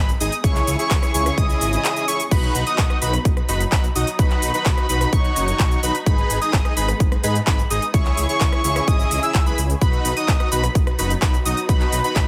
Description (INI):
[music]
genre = EDM, festival progressive house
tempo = 128 BPM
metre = 4/4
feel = straight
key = B major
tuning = A4 = 440 Hz
[part]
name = muted studio string section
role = sustained chords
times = 0.0-12.3 s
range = C#3 to G#4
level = -34 LUFS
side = equal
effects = sidechain pumping
[part]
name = unison lead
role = arpeggios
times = 0.0-12.3 s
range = B5 to E6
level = -27 LUFS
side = equal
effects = cassette tape, sidechain pumping, digital delay
[part]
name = dense compressed supersaw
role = riff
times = 0.0-12.3 s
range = D#4 to E5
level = -28 LUFS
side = equal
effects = sidechain pumping, digital delay
[part]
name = detuned saw bass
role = bass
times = 0.0-12.2 s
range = F#1 to G#2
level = -27 LUFS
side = equal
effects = sidechain pumping
[part]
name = big-room dance drum kit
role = drums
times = 0.1-12.3 s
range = crash cymbal, handclaps, hi-hat, rim click, shaker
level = -28 LUFS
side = equal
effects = overdrive
[part]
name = electronic kick drum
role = drums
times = 0.4-12.3 s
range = none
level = -21 LUFS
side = equal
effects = overdrive
[sound]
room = little or no reverb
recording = none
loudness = -19 LUFS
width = mono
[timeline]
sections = 0.0-2.3 A section; 2.3-12.3 A section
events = drop 0.0-2.3, 2.3-12.3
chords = 0.4 C#m; 2.3 B; 6.1 G#m; 7.9 C#m; 9.8 B